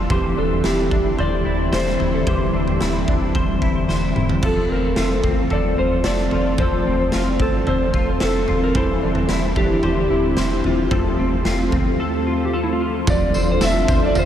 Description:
dream pop; 111 BPM; 4/4; straight; F major; A4 = 441 Hz
ensemble organ-string; sustained chords; 0.0-14.3 s; D3 to F4; -22 LUFS; equal; ensemble chorus
semi-hollow electric guitar; arpeggios; 0.0-14.3 s; E3 to C5; -26 LUFS; left 2 dB; ensemble chorus, tape echo
round analog bass; bass; 0.0-14.3 s; E1 to G1; -24 LUFS; equal
clean lap steel guitar; melody; 0.1-14.3 s; E4 to E5; -24 LUFS; equal; lush chorus, tape echo
raw garage drum kit; drums; 0.1-14.3 s; crash cymbal, kick drum, snare drum, tambourine, toms; -22 LUFS; right 1 dB
wet huge ambient reverb, RT60 8.4 s; dreamy mix soaked in reverb; -17 LUFS; side -10 dB against mid
0.0-13.1 A section; 13.1-14.3 B section
drum fill 3.9-4.4
0.1 Cadd9/E; 4.4 F; 8.8 Cadd9/E; 10.9 F; 13.1 F6

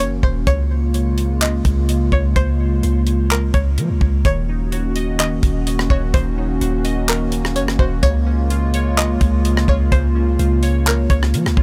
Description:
hip hop, atmospheric cloud-rap; 127 BPM; 4/4; half-time; Eb dorian; A4 = 440 Hz
string-like resonator pluck; melody; 0.0-11.3 s; Bb4 to Eb5; -29 LUFS; equal; chorus, tape echo
dark analog pad; sustained chords; 0.0-11.6 s; Db3 to Gb4; -24 LUFS; equal; subtle chorus, sidechain pumping
warm 808-style bass; bass; 0.0-11.6 s; Eb1 to F3; -21 LUFS; equal
tight funk drum kit; drums; 0.0-11.6 s; handclaps, hi-hat, kick drum, rim click; -21 LUFS; equal
glassy digital keys; arpeggios; 4.3-11.6 s; Db3 to Eb5; -32 LUFS; equal; chorus, tape echo
little or no reverb; -18 LUFS; mono
0.0-4.2 A section; 4.2-11.6 B section
0.5 Db6; 4.2 Ebm7; 8.0 Db6

